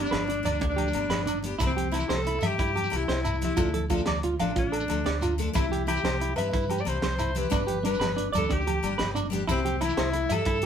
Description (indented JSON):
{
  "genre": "highlife guitar band",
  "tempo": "122 BPM (dotted quarters)",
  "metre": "12/8",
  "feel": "straight",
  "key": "C major",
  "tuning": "A4 = 440 Hz",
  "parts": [
    { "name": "clear alto saxophone", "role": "melody", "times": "0.0-10.7 s", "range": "C4 to D5", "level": "-30 LUFS", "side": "left 3 dB", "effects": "none" },
    { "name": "picked steel-string acoustic guitar", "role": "accompaniment", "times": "0.0-10.4 s", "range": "E3 to A4", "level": "-34 LUFS", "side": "left 5 dB", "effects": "none" },
    { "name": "electric guitar at the edge of break-up", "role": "arpeggios", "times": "0.0-10.7 s", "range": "D4 to F5", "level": "-30 LUFS", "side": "right 5 dB", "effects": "tremolo" },
    { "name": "fingered electric bass", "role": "bass", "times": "0.0-10.7 s", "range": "G1 to G2", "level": "-31 LUFS", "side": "equal", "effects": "none" },
    { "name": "tight funk drum kit", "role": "drums", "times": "0.1-10.7 s", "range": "hi-hat, kick drum, snare drum", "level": "-33 LUFS", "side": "equal", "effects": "none" },
    { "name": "agogo bells", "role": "percussion", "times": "0.1-10.5 s", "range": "none", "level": "-39 LUFS", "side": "left 7 dB", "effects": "none" },
    { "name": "congas", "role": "percussion", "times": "0.1-10.7 s", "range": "none", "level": "-36 LUFS", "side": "right 2 dB", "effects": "none" },
    { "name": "shekere", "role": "percussion", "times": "0.1-10.6 s", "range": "none", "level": "-38 LUFS", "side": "right 1 dB", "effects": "none" }
  ],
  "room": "moderate studio reverb, RT60 0.7 s",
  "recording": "band playing live in one room",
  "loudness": "-24 LUFS",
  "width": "side -8 dB against mid",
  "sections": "0.0-10.7 A section",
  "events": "none",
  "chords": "0.0 G; 1.6 C; 3.6 Dm; 5.5 C; 7.5 G; 9.5 C",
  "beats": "0.13 0.62 1.11 | 1.60 2.10 2.59 3.08 | 3.58 4.07 4.56 5.05 | 5.55 6.04 6.53 7.02 | 7.52 8.01 8.50 8.99 | 9.48 9.98 10.47"
}